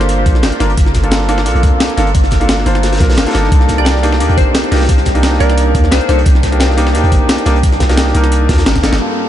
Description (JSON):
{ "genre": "liquid drum and bass", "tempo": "175 BPM", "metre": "4/4", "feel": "straight", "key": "unclear", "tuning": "A4 = 440 Hz", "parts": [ { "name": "clear concert grand piano", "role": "accompaniment", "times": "0.0-9.3 s", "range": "G2 to C5", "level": "-16 LUFS", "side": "equal", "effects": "low-pass filter, diffuse ambient delay" }, { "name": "long sustained 808-style bass", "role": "bass", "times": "0.0-9.0 s", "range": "G1 to Eb2", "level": "-13 LUFS", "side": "equal", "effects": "none" }, { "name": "breakbeat sampler-style drum kit", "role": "drums", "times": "0.0-9.0 s", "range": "hi-hat, snare drum", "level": "-18 LUFS", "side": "equal", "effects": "small room reverb" }, { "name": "crunchy breakbeat drum kit", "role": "drums", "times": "0.1-8.9 s", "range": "hi-hat, snare drum", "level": "-24 LUFS", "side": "equal", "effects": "high-pass filter on hats, small room reverb, high-pass filter on snare, high-pass filter on room" }, { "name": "electronic kick drum", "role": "drums", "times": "0.3-8.8 s", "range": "none", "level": "-13 LUFS", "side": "equal", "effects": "small room reverb" }, { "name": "glassy wavetable pluck", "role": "melody", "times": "3.8-6.4 s", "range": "C5 to D5", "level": "-24 LUFS", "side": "left 1 dB", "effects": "chorus, vintage 12-bit sampler grit, tape echo" }, { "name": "airy breathy pad", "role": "sustained chords", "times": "9.3 s", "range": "none", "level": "barely audible", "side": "none", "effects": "none" } ], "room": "moderate huge ambient reverb, RT60 8.9 s", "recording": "dreamy mix soaked in reverb, nothing above 10.7 kHz", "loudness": "-9 LUFS", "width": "side -11 dB against mid", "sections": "0.0-9.0 A section", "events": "drum fill 8.7; band accent 8.9", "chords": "0.0 Gm9; 3.5 Cm9" }